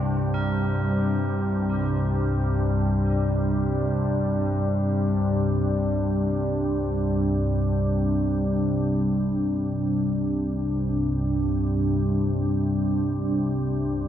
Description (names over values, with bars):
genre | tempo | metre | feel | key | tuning
dark ambient drone | free time | none | none | unclear | A4 = 440 Hz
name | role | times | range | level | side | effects
sweeping resonant pad | sustained chords | 0.0-14.1 s | C3 to D4 | -26 LUFS | equal | chorus
tubular bells | arpeggios | 0.0-9.1 s | C4 to Bb4 | -39 LUFS | right 2 dB | dub echo
organ-like drone | drone | 0.0-14.1 s | C2 to G2 | -24 LUFS | equal | ensemble chorus, built-in reverb
bronze singing bowl | texture | 0.0-14.1 s | G4 | -42 LUFS | right 4 dB | none
room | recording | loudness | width
moderate spring reverb, RT60 2.6 s | echo-heavy mix | -22 LUFS | side -10 dB against mid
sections
0.0-9.1 A section; 9.1-14.1 B section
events
fade-out on tubular bells 0.0-9.1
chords
0.0 C5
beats
free time